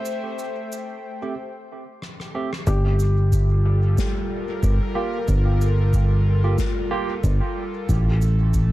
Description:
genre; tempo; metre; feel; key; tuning
ambient dub; 92 BPM; 4/4; swing 55% on 16ths; G dorian; A4 = 440 Hz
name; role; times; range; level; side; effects
airy breathy pad; sustained chords; 0.0-8.7 s; G3 to G5; -30 LUFS; left 1 dB; chorus
drifting glass-harmonics texture; texture; 0.0-1.4 s; C5; -44 LUFS; left 4 dB; chorus, built-in reverb
cabasa, rim click and snare drum; drums; 0.1-8.7 s; none; -35 LUFS; left 3 dB; dub echo
barky tine electric piano; stabs; 1.2-7.1 s; A3 to G4; -31 LUFS; right 4 dB; lush chorus, dub echo
felt-muted upright piano; arpeggios; 2.7-7.9 s; G4; -33 LUFS; left 4 dB; dub echo
fingered electric bass; bass; 2.7-8.7 s; G1 to A1; -18 LUFS; equal; none
electronic kick drum; drums; 2.7-8.7 s; none; -24 LUFS; equal; none
room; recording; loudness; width
small room ambience; dark, warm production; -19 LUFS; side -16 dB against mid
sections
0.0-2.7 A section; 2.7-8.7 B section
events
break 1.4-2.7; drum fill 2.0-2.7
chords
0.0 Am7; 2.7 Gm7; 7.9 N.C.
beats
| 0.06 0.71 1.36 2.02 | 2.67 3.32 3.97 4.63 | 5.28 5.93 6.58 7.24 | 7.89 8.54

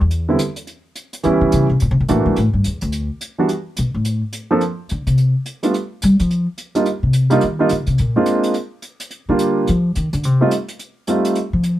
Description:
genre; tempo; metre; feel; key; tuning
jazz piano trio; 213 BPM; 4/4; swing 62% on 8ths; unclear; A4 = 440 Hz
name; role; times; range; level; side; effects
upright bass; bass; 0.0-11.8 s; D2 to G3; -16 LUFS; left 1 dB; none
hi-hat; drums; 0.1-11.7 s; none; -32 LUFS; right 1 dB; none
warm grand piano; melody; 0.3-11.4 s; D3 to A4; -16 LUFS; right 2 dB; none
room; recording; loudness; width
little or no reverb; none; -16 LUFS; side -14 dB against mid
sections
0.0-4.6 A section; 4.6-11.8 A section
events
upright bass solo 0.0-11.8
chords
0.1 N.C.; 1.2 C#m7b5; 1.8 F#7alt; 2.4 Bm7 (rootless); 3.5 Asus2; 4.0 N.C.; 4.6 Csus2; 5.7 G5; 6.9 Cmadd9; 8.0 Bb9; 9.1 Ebmaj7; 10.2 F9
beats
| 0.11 0.39 0.67 0.95 | 1.24 1.52 1.80 2.08 | 2.36 2.64 2.92 3.20 | 3.48 3.77 4.05 4.33 | 4.61 4.89 5.17 5.45 | 5.73 6.01 6.29 6.58 | 6.86 7.14 7.42 7.70 | 7.98 8.26 8.54 8.83 | 9.11 9.39 9.67 9.95 | 10.23 10.51 10.79 11.07 | 11.36 11.64

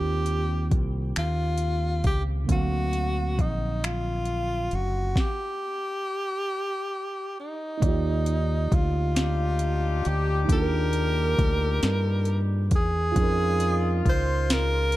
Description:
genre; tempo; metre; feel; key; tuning
slow six-eight R&B; 45 BPM (dotted quarters); 6/8; straight; Eb major; A4 = 440 Hz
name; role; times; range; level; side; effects
breathy tenor saxophone; melody; 0.0-15.0 s; Eb4 to C5; -29 LUFS; equal; slapback echo
reed electric piano; accompaniment; 0.0-15.0 s; D3 to E#5; -33 LUFS; right 6 dB; overdrive
deep dub fingered electric bass; bass; 0.0-15.0 s; F#1 to G2; -26 LUFS; equal; none
smooth R&B drum kit; drums; 0.3-15.0 s; finger snaps, hi-hat, kick drum, snare drum; -25 LUFS; equal; overdrive
warm horn section; stabs; 9.2-15.0 s; Bb2 to G4; -33 LUFS; left 6 dB; none
room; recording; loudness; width
little or no reverb; dark, warm production; -23 LUFS; side -16 dB against mid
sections
0.0-7.8 A section; 7.8-15.0 B section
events
stop 5.2-7.8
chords
0.0 Eb6; 2.5 D7alt; 5.2 N.C.; 7.8 Ebmaj7; 13.2 Db69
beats
1.16 | 2.49 3.83 | 5.16 6.49 | 7.83 9.16 | 10.49 11.82 | 13.16 14.49

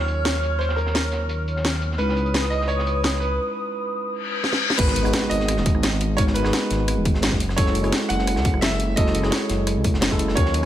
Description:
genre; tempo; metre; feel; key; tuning
liquid drum and bass; 172 BPM; 4/4; straight; G# minor; A4 = 440 Hz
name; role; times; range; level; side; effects
clear grand piano; melody; 0.0-10.7 s; A#4 to F#5; -28 LUFS; right 1 dB; tape echo
tine electric piano; accompaniment; 0.0-10.7 s; F#3 to B4; -27 LUFS; right 1 dB; none
airy breathy pad; sustained chords; 0.0-4.8 s; B4 to E#6; -28 LUFS; equal; chorus, sidechain pumping
dark detuned saw bass; bass; 0.0-10.7 s; D#1 to D#2; -24 LUFS; equal; none
crunchy breakbeat drum kit; drums; 0.1-10.7 s; hi-hat, snare drum; -33 LUFS; equal; high-pass filter on hats, low-pass filter on hats, studio ambience, high-pass filter on snare, low-pass filter on snare, high-pass filter on room, low-pass filter on room
garage drum kit; drums; 0.3-10.7 s; crash cymbal, hi-hat, rim click, snare drum; -25 LUFS; equal; studio ambience
reverse cymbal and impact; sound effects; 4.2-6.2 s; none; -27 LUFS; left 3 dB; none
electronic kick drum; drums; 4.8-10.4 s; none; -22 LUFS; equal; studio ambience
room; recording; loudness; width
light reverb, small room ambience; none; -19 LUFS; side -12 dB against mid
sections
0.0-4.8 A section; 4.8-10.7 B section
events
break 3.4-4.8; reverse cymbal 4.2-4.8; drum fill 4.4-4.8; drop 4.8-10.7; impact 4.8-6.2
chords
0.0 D#m9; 2.0 C#m9; 4.8 G#m9; 7.4 F#m9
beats
0.25 | 0.60 0.95 1.30 1.65 | 2.00 2.35 2.69 3.04 | 3.39 3.74 4.09 4.44 | 4.79 5.14 5.49 5.83 | 6.18 6.53 6.88 7.23 | 7.58 7.93 8.28 8.62 | 8.97 9.32 9.67 10.02 | 10.37

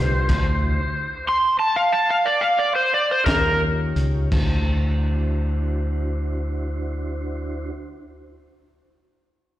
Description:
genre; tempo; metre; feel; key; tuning
slow blues; 56-63 BPM (dotted quarters); 12/8; straight; D mixolydian; A4 = 440 Hz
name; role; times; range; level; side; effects
overdriven slide guitar; melody; 0.0-3.6 s; Bb4 to C6; -19 LUFS; equal; slapback echo
mellow tonewheel organ; sustained chords; 0.0-7.7 s; D4 to Db5; -32 LUFS; right 1 dB; slow rotary speaker
fingered electric bass; bass; 0.0-7.7 s; C2 to Eb2; -22 LUFS; equal; none
crunchy breakbeat drum kit; drums; 0.0-4.5 s; crash cymbal, hi-hat, kick drum, snare drum; -25 LUFS; equal; none
room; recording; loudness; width
light reverb; live gig heard through the venue's PA, recital hall reverb; -19 LUFS; side -14 dB against mid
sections
0.0-4.3 A section; 4.3-8.6 B section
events
slowing down 0.0-4.3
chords
0.3 D9; 3.3 Eb9; 4.3 D9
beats
| 0.31 1.27 2.26 3.27 | 4.32 5.38 6.45 7.51

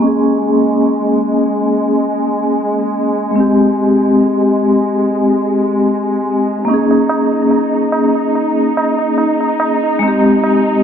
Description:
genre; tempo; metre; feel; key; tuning
trip hop; 72 BPM; 4/4; swing 54% on 16ths; Bb dorian; A4 = 440 Hz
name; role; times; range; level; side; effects
vibraphone with medium hard mallets; accompaniment; 0.0-10.8 s; Ab3 to Ab4; -13 LUFS; left 1 dB; tremolo, tape echo
warm studio violin section; sustained chords; 0.0-10.8 s; Ab3 to Eb4; -18 LUFS; right 1 dB; vintage 12-bit sampler grit
tabla; percussion; 6.7-10.8 s; none; -21 LUFS; right 3 dB; none
room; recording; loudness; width
moderate lush hall reverb, RT60 2.7 s; dark, warm production, low-pass filter; -12 LUFS; side -8 dB against mid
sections
0.0-10.8 A section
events
filter sweep 0.0-10.8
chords
0.0 Bbm7; 3.4 Abmaj7; 6.7 Bbm7; 10.0 Abmaj7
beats
| 0.02 0.85 1.69 2.52 | 3.35 4.19 5.02 5.86 | 6.69 7.52 8.36 9.19 | 10.02

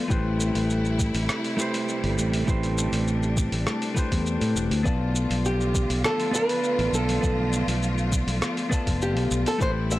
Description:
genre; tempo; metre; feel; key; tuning
sunset chillout; 101 BPM; 4/4; straight; unclear; A4 = 440 Hz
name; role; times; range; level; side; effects
clean electric guitar; accompaniment; 0.0-10.0 s; A3 to A5; -28 LUFS; moving between left 4 dB and right 4 dB; auto-pan, analog delay
clear studio string section; sustained chords; 0.0-10.0 s; C3 to F4; -31 LUFS; left 1 dB; none
fingered electric bass; bass; 0.1-10.0 s; E1 to A2; -26 LUFS; equal; none
dusty soul sampler-style drum kit; drums; 0.1-10.0 s; hi-hat, rim click, shaker; -31 LUFS; equal; small room ambience
electronic kick drum; drums; 0.1-9.7 s; none; -25 LUFS; equal; small room ambience
nylon-string guitar; melody; 5.5-10.0 s; G4 to E5; -27 LUFS; equal; none
room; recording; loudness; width
digital ambience; dry, gritty hardware recording; -22 LUFS; side -16 dB against mid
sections
0.0-10.0 A section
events
none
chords
0.1 Am9; 4.9 Bm7b5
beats
| 0.10 0.70 1.29 1.89 | 2.48 3.07 3.67 4.26 | 4.86 5.45 6.04 6.64 | 7.23 7.83 8.42 9.01 | 9.61

